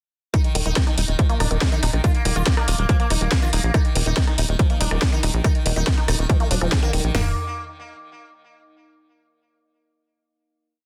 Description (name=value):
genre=psychedelic trance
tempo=141 BPM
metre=4/4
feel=straight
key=unclear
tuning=A4 = 440 Hz
part: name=sitar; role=melody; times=0.3-7.3 s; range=Eb3 to F4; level=-32 LUFS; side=equal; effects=phaser, sidechain pumping, delay
part: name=woody wave-folded pluck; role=riff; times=0.3-7.3 s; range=D3 to Eb4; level=-32 LUFS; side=equal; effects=chorus, sidechain pumping, tape echo
part: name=drum and bass drum kit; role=drums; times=0.3-7.1 s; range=hi-hat, rim click, snare drum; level=-28 LUFS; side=equal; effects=none
part: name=techno drum kit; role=drums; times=0.3-7.2 s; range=hi-hat, kick drum, snare drum, toms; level=-22 LUFS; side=equal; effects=overdrive
part: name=tight sequencer bass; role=bass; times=0.6-7.3 s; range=Eb1 to Bb1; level=-24 LUFS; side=equal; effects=tube saturation
room=light reverb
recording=dense, heavily limited modern master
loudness=-20 LUFS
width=mono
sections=0.3-7.1 drop; 7.1-8.8 final chord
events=drop 0.3-7.1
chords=0.3 Eb5